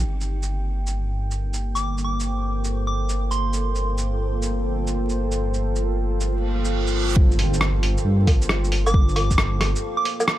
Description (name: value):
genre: future garage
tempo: 135 BPM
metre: 4/4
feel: swing 66% on 16ths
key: G minor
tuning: A4 = 440 Hz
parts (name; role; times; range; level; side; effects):
- deep dark ambient pad; sustained chords; 0.0-10.4 s; Bb3 to G5; -28 LUFS; equal; chorus, built-in reverb, sidechain pumping
- dark detuned saw bass; bass; 0.0-9.7 s; G1 to G2; -23 LUFS; equal; sidechain pumping
- lo-fi sampler-style drum kit; drums; 0.2-10.4 s; hi-hat, rim click, shaker, woodblock; -25 LUFS; equal; none
- soft synth bell; melody; 1.8-3.9, 8.9-10.2 s; C6 to D6; -29 LUFS; right 2 dB; chorus, phaser, analog delay
- reverse cymbal and impact; sound effects; 6.5-8.9 s; none; -30 LUFS; right 1 dB; none
- electronic kick drum; drums; 7.2-9.4 s; none; -17 LUFS; equal; none
room: digital ambience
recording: vinyl crackle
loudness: -20 LUFS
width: side -14 dB against mid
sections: 0.1-7.2 A section; 7.2-10.4 B section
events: reverse cymbal 6.5-7.2; impact 7.2-8.9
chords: 0.1 Gm11